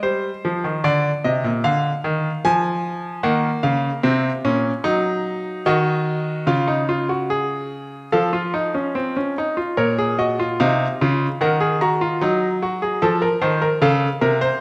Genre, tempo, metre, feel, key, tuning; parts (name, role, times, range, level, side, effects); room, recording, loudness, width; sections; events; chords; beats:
classical, baroque-style 3-part fugue for grand piano; 74 BPM; 4/4; straight; Bb minor from 3.2 s; A4 = 440 Hz
bright baby grand piano; solo; 0.0-14.6 s; Bb2 to Bb5; -20 LUFS; equal
wet recital hall reverb, RT60 1.6 s; -20 LUFS; mono
0.0-9.8 A section; 9.8-14.6 B section
0.0 Eb; 1.6 Ddim; 3.2 Cm7b5; 6.5 Dbadd9; 8.1 N.C.; 9.8 Bbm; 11.4 Ebmadd11; 13.0 F7
| 0.04 0.84 1.64 2.44 | 3.24 4.04 4.85 5.66 | 6.47 7.29 8.12 8.94 | 9.76 10.58 11.39 12.20 | 13.01 13.81